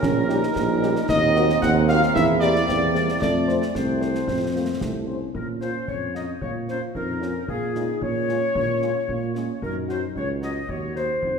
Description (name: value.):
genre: military-style march for wind band.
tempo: 112 BPM.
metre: 2/4.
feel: straight.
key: Bb minor.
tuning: A4 = 441 Hz.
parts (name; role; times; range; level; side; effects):
warm cornet; melody; 0.0-11.0 s; Ab4 to Gb5; -28 LUFS; right 2 dB; none.
mellow woodwind section; second line; 0.0-11.4 s; Ab4 to Gb5; -26 LUFS; left 2 dB; none.
warm euphonium; second line; 0.0-11.4 s; G3 to Gb4; -29 LUFS; right 1 dB; none.
warm trombone section; sustained chords; 0.0-5.0 s; G3 to Db4; -30 LUFS; right 1 dB; none.
mellow tuba; bass; 0.0-11.4 s; Bb1 to Bb2; -25 LUFS; right 2 dB; none.
concert snare drum, concert bass drum and clash cymbals; drums; 0.0-11.4 s; none; -32 LUFS; left 2 dB; none.
mellow French horn section; accompaniment; 0.3-11.0 s; Gb3 to C5; -32 LUFS; left 4 dB; none.
room: moderate concert hall reverb, RT60 2.1 s.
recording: minimal, uncompressed stereo recording.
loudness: -20 LUFS.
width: side -6 dB against mid.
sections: 0.0-5.3 A section; 5.3-11.4 B section.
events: none.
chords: 0.0 Gdim/Bb; 1.1 Cm7b5/Eb; 2.2 C7/E; 3.2 F; 5.3 Bbm; 7.5 Db/Bb; 9.6 Gb; 10.7 Ebm.